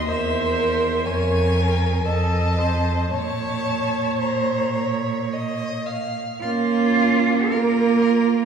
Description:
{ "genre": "classical, slow romantic movement for string quartet", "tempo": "53-62 BPM", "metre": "3/4", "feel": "rubato", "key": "Bb minor", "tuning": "A4 = 440 Hz", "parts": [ { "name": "rich violin", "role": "melody", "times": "0.0-8.4 s", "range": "Db4 to Bb5", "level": "-28 LUFS", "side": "left 4 dB", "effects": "none" }, { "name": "warm violin", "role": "second line", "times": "0.0-8.1 s", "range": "Bb4 to F5", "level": "-27 LUFS", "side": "left 1 dB", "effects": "none" }, { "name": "rich viola", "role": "accompaniment", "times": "0.0-8.4 s", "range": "Bb3 to Db5", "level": "-23 LUFS", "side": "right 4 dB", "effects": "none" }, { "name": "clear cello", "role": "bass", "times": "0.1-8.4 s", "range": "E2 to Bb4", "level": "-23 LUFS", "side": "right 2 dB", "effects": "none" } ], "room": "wet concert hall reverb, RT60 2.4 s", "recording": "heard from further back in the room, small room ambience", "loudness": "-19 LUFS", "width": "side -7 dB against mid", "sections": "0.0-6.4 A section; 6.4-8.4 B section", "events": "none", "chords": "0.1 C7/E; 1.1 Bbm/F; 2.1 F7; 3.1 Bbm" }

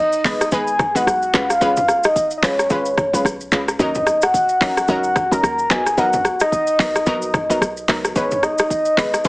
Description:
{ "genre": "afrobeats", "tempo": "110 BPM", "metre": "4/4", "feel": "swing 58% on 16ths", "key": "G# dorian", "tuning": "A4 = 440 Hz", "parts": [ { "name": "soft octave-layered synth lead", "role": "melody", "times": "0.0-9.3 s", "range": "C#5 to A#5", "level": "-18 LUFS", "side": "equal", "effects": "chorus, digital delay" }, { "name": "short 808-style bass", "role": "bass", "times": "0.0-9.3 s", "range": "F#1 to D#2", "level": "-24 LUFS", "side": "equal", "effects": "none" }, { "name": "deep house drum kit", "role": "drums", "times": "0.1-9.3 s", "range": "handclaps, hi-hat, kick drum, rim click, shaker, toms", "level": "-20 LUFS", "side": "equal", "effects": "none" }, { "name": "analog pluck", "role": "accompaniment", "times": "0.2-9.3 s", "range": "F#3 to B4", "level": "-22 LUFS", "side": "equal", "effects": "chorus" } ], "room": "moderate studio reverb, RT60 0.5 s", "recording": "heavily compressed radio sound, multiband compression, small speaker sound", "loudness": "-15 LUFS", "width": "side -22 dB against mid", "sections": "0.0-9.3 A section", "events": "none", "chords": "0.0 G#m; 1.3 C#7; 3.8 D#m7; 5.7 Bmaj7; 8.2 G#m" }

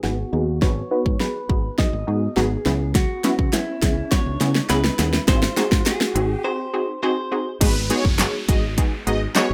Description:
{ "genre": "dance-pop", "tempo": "103 BPM", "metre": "4/4", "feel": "straight", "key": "unclear", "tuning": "A4 = 440 Hz", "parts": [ { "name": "direct-recorded clean electric guitar", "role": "melody", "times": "0.0-7.6 s", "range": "E4 to D#5", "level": "-31 LUFS", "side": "equal", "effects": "spring reverb, low-pass filter, delay" }, { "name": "unison pluck", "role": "accompaniment", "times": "0.0-9.5 s", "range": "G#3 to B4", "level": "-27 LUFS", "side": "equal", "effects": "analog chorus, sidechain pumping, low-pass filter" }, { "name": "fingered electric bass", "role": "bass", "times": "0.0-9.5 s", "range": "F#1 to C#3", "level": "-27 LUFS", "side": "equal", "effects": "sidechain pumping" }, { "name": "pop drum kit", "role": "drums", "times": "0.0-9.5 s", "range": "crash cymbal, handclaps, hi-hat, kick drum, snare drum", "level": "-22 LUFS", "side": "equal", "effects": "none" }, { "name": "riser and downlifter", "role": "sound effects", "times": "0.9-9.5 s", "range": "none", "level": "-36 LUFS", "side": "equal", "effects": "none" }, { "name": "group handclap", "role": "percussion", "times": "3.5-9.5 s", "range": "none", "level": "-34 LUFS", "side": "equal", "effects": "none" }, { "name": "soft supersaw", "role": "melody", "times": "7.6-9.5 s", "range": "B4 to D#5", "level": "-31 LUFS", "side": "equal", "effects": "sidechain pumping, delay" } ], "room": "moderate studio reverb, RT60 0.5 s", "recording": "rough home demo mix", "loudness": "-21 LUFS", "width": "mono", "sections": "0.0-7.6 A section; 7.6-9.5 B section", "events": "build-up 0.0-7.6; drum fill 0.0-6.4; filter sweep 0.0-7.6; break 6.4-7.6; drop 7.6-9.5", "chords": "0.0 G#m7; 2.7 C#m7; 5.3 G#7; 7.6 G#m7" }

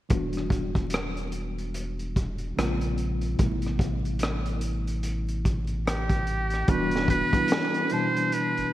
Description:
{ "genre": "R&B, neo-soul", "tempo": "73 BPM", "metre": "4/4", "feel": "swing 59% on 16ths", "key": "E minor", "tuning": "A4 = 435 Hz", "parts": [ { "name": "tine electric piano", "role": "accompaniment", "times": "0.1-8.7 s", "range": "B2 to A5", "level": "-30 LUFS", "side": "equal", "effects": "medium stereo tremolo" }, { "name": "round analog bass", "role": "bass", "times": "0.1-8.6 s", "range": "E1 to A#1", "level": "-30 LUFS", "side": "equal", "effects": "none" }, { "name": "crunchy breakbeat drum kit", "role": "drums", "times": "0.1-8.7 s", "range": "hi-hat, kick drum, rim click, snare drum", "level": "-28 LUFS", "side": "equal", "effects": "gated reverb" }, { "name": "trumpet with metal mute", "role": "melody", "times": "5.9-8.7 s", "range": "G4 to C5", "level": "-26 LUFS", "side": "right 2 dB", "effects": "none" } ], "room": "light reverb, small room ambience", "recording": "bright 1980s-style digital production, vinyl crackle", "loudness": "-24 LUFS", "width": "side -14 dB against mid", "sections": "0.1-6.7 A section; 6.7-8.7 B section", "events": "none", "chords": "0.1 Em7; 2.6 A#m9; 3.4 Am9; 6.7 Em7" }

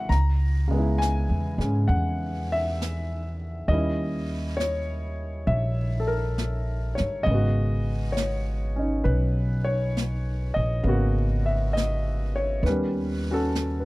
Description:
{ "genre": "jazz ballad", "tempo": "67 BPM", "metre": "4/4", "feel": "swing 69% on 8ths", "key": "G# minor", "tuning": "A4 = 440 Hz", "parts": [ { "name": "clear concert grand piano", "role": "accompaniment", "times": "0.0-13.8 s", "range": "C#3 to A#5", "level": "-27 LUFS", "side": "equal", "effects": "none" }, { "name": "upright bass", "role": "bass", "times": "0.1-13.8 s", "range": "G1 to G#2", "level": "-25 LUFS", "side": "equal", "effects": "none" }, { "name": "jazz brush drum kit", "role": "drums", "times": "0.1-13.8 s", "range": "brushed snare drum, hi-hat, snare drum", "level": "-36 LUFS", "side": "left 1 dB", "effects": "none" } ], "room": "little or no reverb", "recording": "dry, close 1970s-style studio recording", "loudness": "-23 LUFS", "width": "side -20 dB against mid", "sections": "0.0-13.8 A section", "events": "none", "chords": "0.1 C#m7; 3.7 D#7b9; 7.3 G#m11; 12.6 D#7alt" }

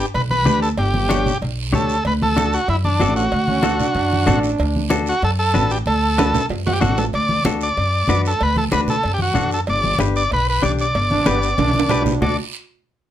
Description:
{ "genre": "latin, cumbia", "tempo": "189 BPM", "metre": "4/4", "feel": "straight", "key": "D major", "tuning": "A4 = 439 Hz", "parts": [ { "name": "overdriven combo organ", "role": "melody", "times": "0.0-12.4 s", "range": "D4 to D5", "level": "-20 LUFS", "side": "equal", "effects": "none" }, { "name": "semi-hollow electric guitar", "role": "accompaniment", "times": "0.0-12.4 s", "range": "D4 to D5", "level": "-22 LUFS", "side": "left 5 dB", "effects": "none" }, { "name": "upright bass", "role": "bass", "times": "0.1-12.4 s", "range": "G1 to F#2", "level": "-21 LUFS", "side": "equal", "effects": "none" }, { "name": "cowbell and timbales", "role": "percussion", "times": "0.1-12.3 s", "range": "none", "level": "-27 LUFS", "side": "right 5 dB", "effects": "none" }, { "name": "congas", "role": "percussion", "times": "0.2-12.3 s", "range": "none", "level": "-24 LUFS", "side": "equal", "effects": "none" }, { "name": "guiro", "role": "percussion", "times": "0.2-12.3 s", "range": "none", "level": "-33 LUFS", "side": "right 7 dB", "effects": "none" }, { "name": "growling trombone", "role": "second line", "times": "3.5-4.9, 11.1-12.4 s", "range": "B3 to F#4", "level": "-23 LUFS", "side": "right 4 dB", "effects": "none" } ], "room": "light reverb", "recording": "none", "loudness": "-16 LUFS", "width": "side -11 dB against mid", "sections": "0.0-7.1 A section; 7.1-12.2 B section", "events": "drum fill 6.2-7.1, 11.6-12.2", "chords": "0.0 G; 2.0 D; 9.7 G; 12.2 D" }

